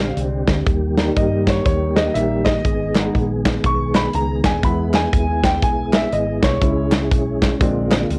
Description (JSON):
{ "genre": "uptempo gospel", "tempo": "121 BPM", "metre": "4/4", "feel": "swing 62% on 8ths", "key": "G# harmonic minor", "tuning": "A4 = 439 Hz", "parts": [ { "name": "clear concert grand piano", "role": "accompaniment", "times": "0.0-8.2 s", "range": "G3 to C#6", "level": "-25 LUFS", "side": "equal", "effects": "cassette tape" }, { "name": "mellow tonewheel organ", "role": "sustained chords", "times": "0.0-8.2 s", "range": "D3 to G#4", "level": "-26 LUFS", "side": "equal", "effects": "slow rotary speaker, chorus vibrato, cassette tape" }, { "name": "hollow-body short-scale fingered electric bass", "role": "bass", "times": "0.0-8.2 s", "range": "D#1 to G2", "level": "-26 LUFS", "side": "equal", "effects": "tube saturation" }, { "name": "modern studio drum kit", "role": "drums", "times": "0.2-8.2 s", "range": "hi-hat, kick drum, snare drum", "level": "-21 LUFS", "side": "equal", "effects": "cassette tape" }, { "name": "group handclap", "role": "percussion", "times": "3.0-8.0 s", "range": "none", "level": "-34 LUFS", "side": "equal", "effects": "none" } ], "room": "light reverb", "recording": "home recording on cassette", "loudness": "-18 LUFS", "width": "mono", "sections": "0.0-8.2 A section", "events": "grand piano solo 0.0-8.2", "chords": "0.0 A#13; 0.7 D#; 2.6 G#m; 4.6 E; 6.6 C#m; 7.6 A#7" }